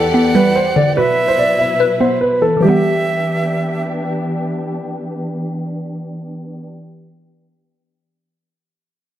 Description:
hip hop; 145 BPM; 4/4; half-time; E minor; A4 = 440 Hz
dark concert grand piano; melody; 0.0-3.8 s; G4 to E5; -16 LUFS; right 1 dB; low-pass filter
breathy bright jazz flute; second line; 0.0-3.8 s; E5 to F#5; -21 LUFS; right 3 dB; tape echo
glassy wavetable pluck; accompaniment; 0.0-7.4 s; E2 to B4; -16 LUFS; left 1 dB; chorus, low-pass filter
warm symphonic string section; sustained chords; 0.0-6.7 s; E2 to D5; -22 LUFS; left 1 dB; low-pass filter
moderate lush hall reverb, RT60 2.0 s; -14 LUFS; side -12 dB against mid
0.0-2.6 A section; 2.6-5.9 B section
filter sweep 0.0-2.6
0.0 Em7; 1.0 Bsus4; 2.6 Em7

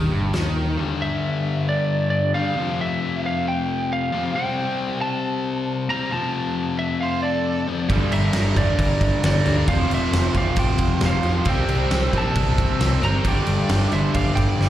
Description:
hard rock; 135 BPM; 4/4; straight; G dorian; A4 = 441 Hz
lightly driven lead guitar; melody; 0.0-14.7 s; G4 to Bb5; -26 LUFS; right 2 dB; slapback echo
biting overdriven guitar; riff; 0.0-14.7 s; F2 to C4; -24 LUFS; left 4 dB; slapback echo
cranked stack guitar; riff; 0.0-0.8, 7.9-14.7 s; F2 to C4; -28 LUFS; right 7 dB; overdrive, slapback echo
picked electric bass; bass; 0.0-0.8, 7.9-14.7 s; F1 to F2; -22 LUFS; equal
huge arena drum kit; drums; 0.3-0.4, 7.9-14.7 s; crash cymbal, hi-hat, kick drum, snare drum; -24 LUFS; equal
octave-fuzz lead guitar; second line; 7.0-14.7 s; A4 to G5; -31 LUFS; right 4 dB; distortion, slapback echo
raw garage guitar; riff; 7.9-14.7 s; F2 to C4; -30 LUFS; right 1 dB; overdrive, slapback echo
small room ambience; live gig heard through the venue's PA, recital hall reverb; -19 LUFS; side -12 dB against mid
0.8-14.7 A section
0.0 N.C.; 0.8 G5; 2.6 F5; 4.3 C5; 6.1 F; 7.9 Gm; 9.7 F5; 11.5 C; 13.3 G5

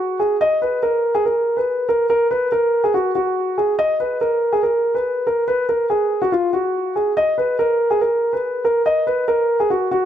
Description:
hip hop; 142 BPM; 4/4; half-time; A4 = 440 Hz
dark concert grand piano; solo; 0.0-10.1 s; F4 to Eb5; -16 LUFS; equal; digital delay
wet recital hall reverb, RT60 1.7 s, small room ambience; -16 LUFS; side -10 dB against mid
0.0-10.1 A section

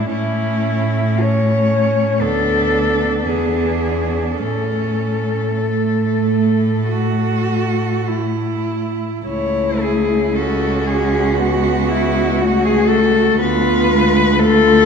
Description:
classical, lyrical piece for cello ensemble; 46-61 BPM; 4/4; rubato; A major; A4 = 441 Hz
warm cello; melody; 0.0-14.9 s; E4 to C#5; -18 LUFS; left 4 dB
rich cello; second line; 0.0-14.9 s; A3 to F#4; -22 LUFS; right 6 dB
rich cello; accompaniment; 0.0-14.9 s; G#3 to C#4; -21 LUFS; left 3 dB
rich cello; bass; 0.1-14.9 s; C#2 to A2; -20 LUFS; right 2 dB
wet concert hall reverb, RT60 2.5 s; dark, warm production; -14 LUFS; side -6 dB against mid
0.0-9.3 A section; 9.3-14.9 B section
0.1 A; 2.2 Bm/D; 3.2 E7; 4.4 A; 9.3 A/C#; 13.4 Bm7b5/D

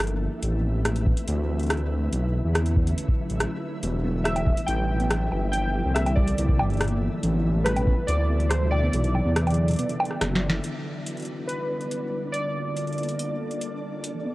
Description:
IDM; 141 BPM; 4/4; straight; E minor; A4 = 440 Hz
glassy FM pad; sustained chords; 0.0-14.3 s; C3 to B4; -32 LUFS; left 1 dB; ensemble chorus, built-in reverb
dark detuned saw bass; bass; 0.0-10.6 s; E1 to E2; -24 LUFS; equal; tube saturation
booming analog drum machine; drums; 0.0-14.1 s; bongos, hi-hat, rim click, snare drum; -29 LUFS; equal
flickering grainy texture; texture; 0.0-14.3 s; D4 to E5; -39 LUFS; equal; built-in reverb, sidechain pumping
electronic kick drum; drums; 1.1-8.0 s; -23 LUFS; equal
harp-like synth pluck; arpeggios; 3.8-10.6, 14.1-14.3 s; Bb2 to B3; -31 LUFS; right 1 dB; chorus, digital delay
warbly lo-fi synth keys; melody; 4.2-13.8 s; B4 to G5; -30 LUFS; equal; chorus, digital delay
light reverb, digital ambience; worn, warbling old tape, cassette tape, warbly pitch drift, lossy compression artefacts; -22 LUFS; side -18 dB against mid
0.0-10.6 A section; 10.6-14.3 B section
kick drops out 8.9-10.6; drum fill 10.2-10.6; band accent 10.5
0.4 Am9; 2.1 Bm9; 3.8 Em9; 5.3 Gm9; 7.2 Am9; 8.9 Bm7; 10.6 Em9; 12.1 Gm9

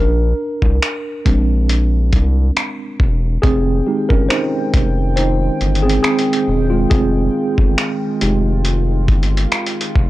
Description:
contemporary R&B; 69 BPM; 4/4; swing 54% on 16ths; F minor; A4 = 441 Hz
mellow tine electric piano; accompaniment; 0.0-10.0 s; Ab3 to C5; -19 LUFS; right 2 dB; medium stereo tremolo
round analog bass; bass; 0.0-10.1 s; E1 to C2; -16 LUFS; equal
dusty soul sampler-style drum kit; drums; 0.6-10.1 s; finger snaps, hi-hat, kick drum; -16 LUFS; equal
chorused pulse-width pad; sustained chords; 3.4-10.1 s; Eb3 to G5; -24 LUFS; equal
little or no reverb; dry, gritty hardware recording, transformer saturation, cassette tape; -14 LUFS; side -16 dB against mid
0.0-10.1 A section
tine electric piano solo 0.0-10.1
0.0 Bb9; 3.4 Fm9

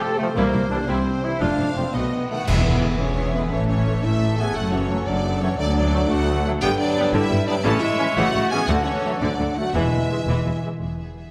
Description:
cinematic, heroic adventure film score; 115 BPM (dotted quarters); 6/8; straight; E mixolydian; A4 = 440 Hz
warm symphonic violin section; melody; 0.0-11.3 s; B4 to A5; -35 LUFS; equal
mellow clarinet; second line; 0.0-10.6 s; D3 to A4; -32 LUFS; equal
mellow cor anglais; second line; 0.0-10.6 s; A3 to C#5; -34 LUFS; equal
mellow hollow small flute group; second line; 0.0-10.6 s; A4 to A5; -36 LUFS; equal
rich symphonic violin section; second line; 0.0-11.3 s; G#4 to A5; -36 LUFS; equal
mellow French horn section; sustained chords; 0.0-10.6 s; A3 to A4; -28 LUFS; equal
concert harp; arpeggios; 0.0-11.3 s; F#2 to G#5; -34 LUFS; equal
warm trombone section; sustained chords; 0.2-10.7 s; D#3 to C#4; -35 LUFS; equal
warm symphonic viola section; accompaniment; 0.4-11.3 s; C#3 to F#4; -33 LUFS; equal
rich symphonic double bass section; bass; 0.4-11.3 s; E1 to D2; -30 LUFS; equal
warm symphonic cello section; bass; 0.4-11.3 s; C2 to B2; -29 LUFS; equal
cymbal swell, clash cymbals and concert bass drum; percussion; 0.4-3.1 s; -30 LUFS; equal
timpani; percussion; 0.4-3.0, 9.7-10.2 s; E2 to C3; -30 LUFS; equal
wet concert hall reverb, RT60 1.7 s; -21 LUFS; mono
0.0-2.5 A section; 2.5-10.8 B section
band accent 2.5-2.8
0.4 C7; 1.4 F; 1.9 B7; 2.5 E; 3.5 A; 4.6 F#m; 5.6 D; 6.6 G; 7.7 A; 8.7 D; 9.8 E

